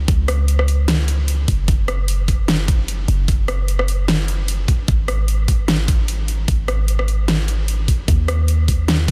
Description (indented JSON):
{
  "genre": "future bass",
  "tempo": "150 BPM",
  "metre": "4/4",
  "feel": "swing 55% on 16ths, half-time",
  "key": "unclear",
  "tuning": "A4 = 443 Hz",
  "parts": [
    { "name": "warm 808-style bass", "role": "bass", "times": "0.0-9.1 s", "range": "Gb1 to Eb2", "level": "-21 LUFS", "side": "equal", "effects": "tube saturation, sidechain pumping" },
    { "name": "dubstep drum kit", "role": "drums", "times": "0.1-9.1 s", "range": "hi-hat, rim click, snare drum", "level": "-25 LUFS", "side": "equal", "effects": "overdrive" },
    { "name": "electronic kick drum", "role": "drums", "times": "0.1-9.1 s", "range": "none", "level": "-19 LUFS", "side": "equal", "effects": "overdrive" }
  ],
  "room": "little or no reverb",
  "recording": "dense, heavily limited modern master",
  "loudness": "-18 LUFS",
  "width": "mono",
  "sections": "0.0-9.1 A section",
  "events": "none",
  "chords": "none"
}